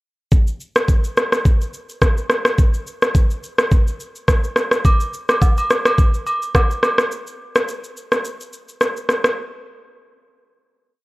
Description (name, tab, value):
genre	afrobeats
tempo	106 BPM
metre	4/4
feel	swing 55% on 16ths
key	none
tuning	none
part	afro-pop drum kit	drums	0.3-9.4 s	kick drum, rim click, shaker	-15 LUFS	equal	none
part	agogo bells and woodblock	percussion	4.9-7.0 s	none	-22 LUFS	right 1 dB	none
room	digital ambience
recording	worn, warbling old tape, cassette tape, warbly pitch drift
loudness	-16 LUFS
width	side -21 dB against mid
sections	0.3-9.4 verse; 9.4-11.0 final hit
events	break 7.1-9.4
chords	none